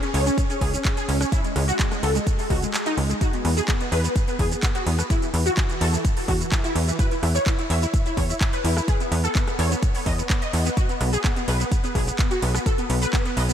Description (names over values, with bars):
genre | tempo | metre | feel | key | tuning
progressive house | 127 BPM | 4/4 | straight | E major | A4 = 440 Hz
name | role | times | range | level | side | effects
wide unison pluck | arpeggios | 0.0-13.5 s | E3 to E5 | -26 LUFS | equal | ensemble chorus, sidechain pumping, tape echo
house drum kit | drums | 0.0-13.5 s | handclaps, hi-hat, rim click, shaker | -29 LUFS | right 2 dB | none
tight sequencer bass | bass | 0.1-13.5 s | B1 to E2 | -22 LUFS | equal | sidechain pumping
electronic kick drum | drums | 0.4-13.2 s | none | -23 LUFS | equal | none
room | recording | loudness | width
light reverb, digital ambience | none | -20 LUFS | side -9 dB against mid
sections
0.0-13.5 A section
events
kick drops out 2.7-3.2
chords
0.0 C#5; 3.2 E5; 10.8 N.C.